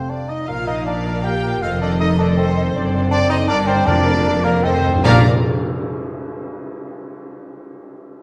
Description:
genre	classical, dramatic, fast romantic movement for symphony orchestra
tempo	158 BPM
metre	3/4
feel	rubato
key	Bb major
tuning	A4 = 441 Hz
part	rich studio violin section	second line	0.0-5.3 s	Bb4 to Bb5	-32 LUFS	equal	none
part	warm bassoon	accompaniment	0.0-5.2 s	Bb3 to G4	-26 LUFS	equal	none
part	dark trombone section	sustained chords	0.0-5.2 s	C3 to D4	-30 LUFS	equal	none
part	mellow French horn section	sustained chords	0.0-5.2 s	Bb3 to G4	-31 LUFS	equal	none
part	concert harp	arpeggios	0.0-6.2 s	F2 to C6	-30 LUFS	equal	none
part	clear trumpet	stabs	0.0-5.2 s	Bb4 to G5	-28 LUFS	equal	none
part	warm symphonic violin section	melody	0.5-5.3 s	D5 to F5	-34 LUFS	equal	none
part	mellow concert flute	second line	0.5-5.3 s	D5 to F5	-32 LUFS	equal	none
part	mellow cor anglais	second line	0.5-5.2 s	A4 to C5	-31 LUFS	equal	none
part	rich studio viola section	accompaniment	0.5-5.3 s	A4 to D5	-33 LUFS	equal	none
part	clear symphonic cello section	bass	0.5-5.3 s	F2 to Bb2	-25 LUFS	equal	none
part	warm chamber double bass section	bass	0.5-5.3 s	F1 to Bb1	-24 LUFS	equal	none
part	cymbal swell and tam-tam	percussion	2.8-6.6 s	none	-32 LUFS	equal	none
part	timpani	percussion	3.9-5.2 s	F2 to Bb2	-26 LUFS	equal	none
room	wet recital hall reverb, RT60 1.5 s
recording	dark, warm production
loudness	-18 LUFS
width	mono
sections	0.0-5.0 A section; 5.0-6.2 B section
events	timpani fill 4.6-5.0; band accent 5.0-5.4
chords	0.5 Bb; 1.6 F7; 2.8 D7/F#; 3.5 Gm; 3.9 Bb/F; 4.6 F7; 5.0 Bb

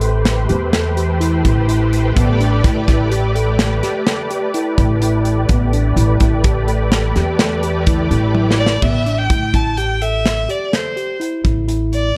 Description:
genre	progressive instrumental, band music in an uneven meter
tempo	126 BPM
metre	7/4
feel	straight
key	A minor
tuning	A4 = 436 Hz
part	analog string pad	accompaniment	0.0-8.8 s	A3 to D5	-24 LUFS	equal	ensemble chorus
part	mellow tine electric piano	arpeggios	0.0-12.1 s	B3 to A4	-24 LUFS	equal	none
part	upright bass	bass	0.0-12.1 s	A1 to A2	-19 LUFS	equal	none
part	modern studio drum kit	drums	0.0-12.0 s	crash cymbal, hi-hat, kick drum, snare drum, toms	-20 LUFS	equal	none
part	warm violin	melody	8.6-12.2 s	C5 to A5	-22 LUFS	equal	digital delay
room	studio reverb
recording	dark, warm production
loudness	-16 LUFS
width	mono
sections	0.0-8.8 A section; 8.8-12.2 B section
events	drum fill 8.3-8.8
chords	0.0 Am9; 8.8 A7(no3)

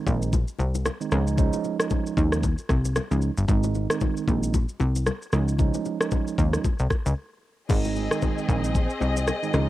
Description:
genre	afrobeats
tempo	114 BPM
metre	4/4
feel	swing 58% on 16ths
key	Ab major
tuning	A4 = 440 Hz
part	mellow tine electric piano	accompaniment	0.0-9.7 s	Eb3 to Eb4	-28 LUFS	right 7 dB	auto-pan, cassette tape
part	plucky analog bass	bass	0.1-9.7 s	G1 to Eb2	-24 LUFS	left 1 dB	none
part	afro-pop drum kit	drums	0.1-9.7 s	crash cymbal, kick drum, rim click, shaker	-25 LUFS	equal	none
part	bongos and congas	percussion	0.1-9.4 s	none	-34 LUFS	left 9 dB	none
part	warm studio string section	sustained chords	7.7-9.7 s	C4 to Eb5	-30 LUFS	left 2 dB	cassette tape
room	little or no reverb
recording	home recording on cassette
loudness	-22 LUFS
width	side -15 dB against mid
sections	0.0-7.7 A section; 7.7-9.7 B section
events	break 7.2-7.7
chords	0.0 Ab; 1.1 Dbadd9; 3.5 Ab; 5.3 Dbadd9; 7.7 Ab

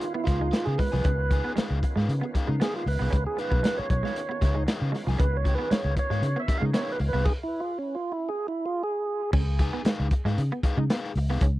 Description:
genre	funk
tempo	116 BPM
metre	4/4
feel	straight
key	Db mixolydian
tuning	A4 = 440 Hz
part	tonewheel organ	melody	0.0-9.3 s	Db4 to F5	-30 LUFS	right 2 dB	overdrive, slow rotary speaker, tape echo
part	crunchy overdriven guitar	accompaniment	0.0-11.4 s	Eb4 to Ab5	-35 LUFS	left 4 dB	none
part	overdriven tonewheel organ	sustained chords	0.0-7.2 s	Eb3 to F4	-40 LUFS	equal	slow rotary speaker, chorus vibrato
part	crunchy breakbeat drum kit	drums	0.0-11.5 s	crash cymbal, hi-hat, kick drum, snare drum	-26 LUFS	equal	none
part	semi-hollow electric guitar	riff	0.1-11.5 s	F3 to Db4	-33 LUFS	right 4 dB	wide subtle chorus
part	vintage muted fingered electric bass	bass	0.3-11.6 s	Cb2 to Db3	-26 LUFS	equal	none
room	little or no reverb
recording	dry, close 1970s-style studio recording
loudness	-24 LUFS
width	side -17 dB against mid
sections	0.0-9.3 A section; 9.3-11.6 B section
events	tonewheel organ solo 0.0-9.3; stop 7.3-9.3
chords	0.0 Db9

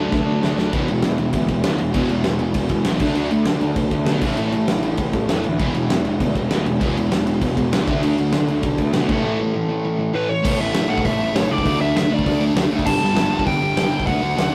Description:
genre	punk rock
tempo	198 BPM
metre	4/4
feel	straight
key	unclear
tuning	A4 = 440 Hz
part	overdriven semi-hollow guitar	riff	0.0-14.5 s	E2 to D4	-26 LUFS	equal	none
part	sludgy distorted guitar	riff	0.0-14.5 s	E2 to D4	-29 LUFS	equal	none
part	sludgy distorted guitar	riff	0.0-10.4 s	A2 to D4	-28 LUFS	equal	overdrive
part	fuzz picked electric bass	bass	0.0-14.5 s	E1 to D3	-26 LUFS	equal	overdrive
part	big rock drum kit	drums	0.1-14.5 s	crash cymbal, hi-hat, kick drum, snare drum	-25 LUFS	equal	none
part	dark smooth lead guitar	melody	10.2-14.5 s	B4 to A5	-25 LUFS	equal	overdrive
room	light reverb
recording	rough rehearsal-room recording, warm saturation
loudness	-20 LUFS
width	mono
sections	0.7-10.5 A section; 10.5-14.5 B section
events	drum fill 0.1-0.7; break 9.2-10.5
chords	0.0 D; 0.7 E; 3.0 D5; 4.2 A5; 5.6 E; 7.9 D5; 9.1 A5; 10.5 A; 11.7 D5; 12.9 G5

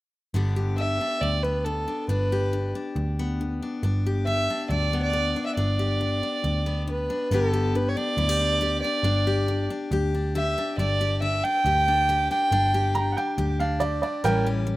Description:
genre	honky-tonk and classic country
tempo	138 BPM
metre	4/4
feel	straight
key	G major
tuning	A4 = 441 Hz
part	picked steel-string acoustic guitar	accompaniment	0.3-14.8 s	G2 to G4	-29 LUFS	left 3 dB	none
part	vintage muted picked electric bass	bass	0.3-14.8 s	G1 to D2	-26 LUFS	equal	none
part	dark fiddle	melody	0.8-13.1 s	A4 to G5	-25 LUFS	right 1 dB	none
part	bright upright piano	second line	12.9-14.5 s	Bb4 to Bb5	-26 LUFS	right 3 dB	none
room	little or no reverb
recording	recorded outdoors, with no room sound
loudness	-22 LUFS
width	side -17 dB against mid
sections	0.3-7.3 A section; 7.3-14.8 B section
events	none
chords	0.3 G; 14.2 A7

